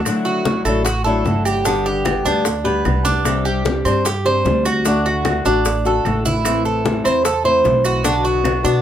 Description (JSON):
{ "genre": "latin, Cuban son and guajira", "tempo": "150 BPM", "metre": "4/4", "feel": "straight", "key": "unclear", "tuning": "A4 = 440 Hz", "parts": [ { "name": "flamenco guitar", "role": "accompaniment", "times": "0.1-8.8 s", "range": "B2 to G4", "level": "-20 LUFS", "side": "left 4 dB", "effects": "none" }, { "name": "bongos", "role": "percussion", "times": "0.1-8.7 s", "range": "none", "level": "-27 LUFS", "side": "left 6 dB", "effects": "none" }, { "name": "claves", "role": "percussion", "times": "0.1-8.6 s", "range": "none", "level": "-29 LUFS", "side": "right 6 dB", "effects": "none" }, { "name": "congas", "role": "percussion", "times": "0.1-8.8 s", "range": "none", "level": "-26 LUFS", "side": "left 3 dB", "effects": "none" }, { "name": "maracas", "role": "percussion", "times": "0.1-8.8 s", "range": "none", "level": "-30 LUFS", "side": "right 5 dB", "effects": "none" }, { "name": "Cuban tres", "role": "arpeggios", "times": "0.2-8.8 s", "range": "D4 to C5", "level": "-19 LUFS", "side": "right 3 dB", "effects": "none" }, { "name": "upright bass", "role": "bass", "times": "0.6-8.8 s", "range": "G1 to B2", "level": "-22 LUFS", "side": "equal", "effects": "none" } ], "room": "moderate studio ambience, RT60 0.5 s", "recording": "faint mains hum", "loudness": "-15 LUFS", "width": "side -10 dB against mid", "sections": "0.1-8.8 A section", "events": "none", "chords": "0.1 Dadd9; 1.7 G; 3.3 Csus2; 4.9 D; 6.5 Am; 8.1 Bm", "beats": "| 0.05 0.45 0.85 1.25 | 1.66 2.06 2.46 2.86 | 3.26 3.66 4.06 4.46 | 4.86 5.26 5.66 6.05 | 6.45 6.85 7.25 7.65 | 8.05 8.45" }